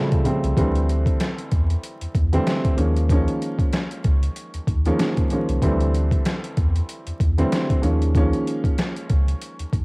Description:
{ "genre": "hip hop, boom-bap hip-hop", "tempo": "95 BPM", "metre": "4/4", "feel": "swing 57% on 16ths", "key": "unclear", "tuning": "A4 = 440 Hz", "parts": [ { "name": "dark grand piano", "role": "accompaniment", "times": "0.0-9.8 s", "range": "C#3 to Db4", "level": "-24 LUFS", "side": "equal", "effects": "cassette tape" }, { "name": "boom bap sampler-style drum kit", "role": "drums", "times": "0.1-9.8 s", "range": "hi-hat, kick drum, snare drum", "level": "-22 LUFS", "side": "equal", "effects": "cassette tape" }, { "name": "warm sub bass", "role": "bass", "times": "0.4-9.8 s", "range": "B#1 to E2", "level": "-21 LUFS", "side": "equal", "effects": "tube saturation" } ], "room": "light reverb", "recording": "home recording on cassette, vinyl crackle", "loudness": "-19 LUFS", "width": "side -29 dB against mid", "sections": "0.6-9.8 A section", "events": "none", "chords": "0.0 A7alt; 0.6 D9sus4; 2.8 Eb9sus4; 5.6 D9sus4; 7.8 Eb9sus4", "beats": "| 0.57 1.20 1.83 2.46 | 3.10 3.73 4.36 4.99 | 5.62 6.25 6.88 7.52 | 8.15 8.78 9.41" }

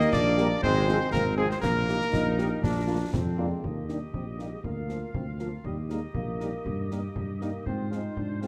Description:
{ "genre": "military-style march for wind band", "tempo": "119 BPM", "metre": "2/4", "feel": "straight", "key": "Eb major", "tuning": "A4 = 440 Hz", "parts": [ { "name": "warm cornet", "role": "melody", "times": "0.0-8.5 s", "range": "G4 to F5", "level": "-33 LUFS", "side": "equal", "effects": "none" }, { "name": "clear woodwind section", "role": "second line", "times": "0.0-8.5 s", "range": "F4 to F5", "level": "-39 LUFS", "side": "equal", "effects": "none" }, { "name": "warm euphonium", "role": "second line", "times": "0.0-8.5 s", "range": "G3 to Eb4", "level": "-37 LUFS", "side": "equal", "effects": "none" }, { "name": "bright trombone section", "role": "sustained chords", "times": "0.0-3.6 s", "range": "Ab3 to Eb4", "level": "-34 LUFS", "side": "equal", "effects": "none" }, { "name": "dark tuba", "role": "bass", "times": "0.0-8.5 s", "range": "Ab1 to Ab2", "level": "-32 LUFS", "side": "equal", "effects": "none" }, { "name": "concert snare drum, concert bass drum and clash cymbals", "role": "drums", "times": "0.0-8.5 s", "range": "none", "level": "-37 LUFS", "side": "equal", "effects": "none" }, { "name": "mellow French horn section", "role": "accompaniment", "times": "0.4-8.5 s", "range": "F3 to Ab4", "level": "-38 LUFS", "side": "equal", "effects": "none" } ], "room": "moderate scoring stage reverb, RT60 1.9 s", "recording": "none", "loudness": "-28 LUFS", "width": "mono", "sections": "0.0-3.6 A section; 3.6-8.5 B section", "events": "none", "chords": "0.0 Eb; 0.6 Fm/Ab; 1.6 Eb/Bb; 2.6 Bb; 3.6 Eb; 4.6 Bb/D; 5.6 Eb; 6.7 Eb/G; 7.7 Fm/Ab", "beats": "0.12 | 0.62 1.13 | 1.63 2.13 | 2.63 3.13 | 3.63 4.14 | 4.64 5.14 | 5.64 6.15 | 6.65 7.15 | 7.66 8.16" }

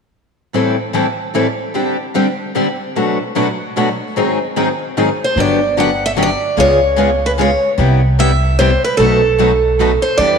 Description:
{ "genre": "acoustic string swing (jazz manouche)", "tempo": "149 BPM", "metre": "3/4", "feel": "swing 63% on 8ths", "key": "G major", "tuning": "A4 = 440 Hz", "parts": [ { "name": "picked steel-string acoustic guitar", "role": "accompaniment", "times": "0.5-10.4 s", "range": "Ab2 to A4", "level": "-17 LUFS", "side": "left 8 dB", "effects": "none" }, { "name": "picked steel-string acoustic guitar", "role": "accompaniment", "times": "0.5-10.4 s", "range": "Ab2 to B4", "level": "-20 LUFS", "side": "right 9 dB", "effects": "none" }, { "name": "picked steel-string acoustic guitar", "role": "melody", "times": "5.2-10.4 s", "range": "A4 to F#5", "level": "-14 LUFS", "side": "right 2 dB", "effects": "none" }, { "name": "upright bass", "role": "bass", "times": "5.4-10.4 s", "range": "G1 to E2", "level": "-17 LUFS", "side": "equal", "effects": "none" } ], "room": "wet echo chamber reverb, RT60 2.5 s", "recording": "1960s-style stereo with parts hard left and right", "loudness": "-12 LUFS", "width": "side -6 dB against mid", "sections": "0.5-5.4 A section; 5.4-10.4 B section", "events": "none", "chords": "0.5 Am7; 1.7 D7sus4; 3.0 Bm7; 4.2 Ab7; 5.4 Gmaj7; 6.6 C#7; 7.8 Cmaj7; 9.0 B7", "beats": "| 0.53 0.94 1.34 | 1.74 2.15 2.55 | 2.95 3.35 3.75 | 4.16 4.56 4.96 | 5.37 5.77 6.17 | 6.57 6.97 7.38 | 7.78 8.18 8.58 | 8.99 9.39 9.79 | 10.19" }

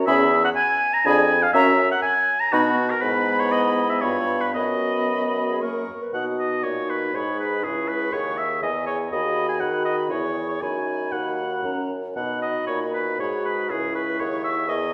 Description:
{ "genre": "quick classical-period movement for wind quintet", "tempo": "120 BPM", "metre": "3/4", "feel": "rubato", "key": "B major", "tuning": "A4 = 440 Hz", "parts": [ { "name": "concert flute", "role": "melody", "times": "0.0-14.9 s", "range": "G#5 to D#6", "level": "-32 LUFS", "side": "equal", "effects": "none" }, { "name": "mellow clarinet", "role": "accompaniment", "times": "0.0-14.9 s", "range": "D#4 to B4", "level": "-33 LUFS", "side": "equal", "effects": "none" }, { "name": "warm French horn", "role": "accompaniment", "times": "0.0-14.9 s", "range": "A#3 to G#4", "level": "-32 LUFS", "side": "equal", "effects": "none" }, { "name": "mellow bassoon", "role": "bass", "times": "0.0-14.9 s", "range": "C#2 to D#3", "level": "-29 LUFS", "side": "equal", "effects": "none" }, { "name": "clear oboe", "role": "second line", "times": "0.1-14.9 s", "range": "F#4 to A#5", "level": "-26 LUFS", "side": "equal", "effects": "none" } ], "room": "wet recital hall reverb, RT60 1.4 s", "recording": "recorded in a church or concert hall", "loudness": "-23 LUFS", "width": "mono", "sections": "0.0-6.1 A section; 6.1-14.9 B section", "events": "none", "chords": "0.1 C#m7/E; 1.1 Fdim7; 1.5 F#; 2.5 B; 3.0 E/G#; 4.0 G7; 4.6 B/F#; 5.6 F#; 6.1 B; 7.1 G#m; 7.6 C#m; 9.1 B/D#; 10.1 C#m/E; 10.6 B/F#; 11.7 F#; 12.2 B; 13.2 G#m; 13.7 C#m", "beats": "| 0.07 0.56 1.05 | 1.55 2.04 2.53 | 3.03 3.52 4.03 | 4.55 5.09 5.62 | 6.14 6.64 7.14 | 7.64 8.13 8.63 | 9.12 9.61 10.11 | 10.62 11.13 11.65 | 12.17 12.68 13.20 | 13.70 14.20 14.70" }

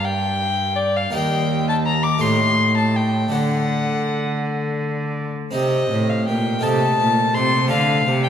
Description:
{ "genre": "classical, baroque-style sonata movement with continuo", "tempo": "55 BPM (dotted quarters)", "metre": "6/8", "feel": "straight", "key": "unclear", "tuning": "A4 = 440 Hz", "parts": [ { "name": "rich violin", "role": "melody", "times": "0.0-8.3 s", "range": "D5 to D6", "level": "-21 LUFS", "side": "left 3 dB", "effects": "none" }, { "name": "harpsichord", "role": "accompaniment", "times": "0.0-8.3 s", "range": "Eb2 to A4", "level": "-22 LUFS", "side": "equal", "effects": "none" }, { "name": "rich cello", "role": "bass", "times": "0.0-8.3 s", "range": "Eb2 to D3", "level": "-22 LUFS", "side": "right 1 dB", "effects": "none" } ], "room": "wet concert hall reverb, RT60 2.5 s", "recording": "none", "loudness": "-17 LUFS", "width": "side -8 dB against mid", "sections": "0.0-8.3 A section", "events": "none", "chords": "0.0 Gm; 1.1 Eb; 2.2 Am7b5; 3.3 D; 5.5 Cm; 6.6 Adim; 7.7 Dm", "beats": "0.06 | 1.14 2.22 | 3.33 4.44 | 5.54 6.63 | 7.70" }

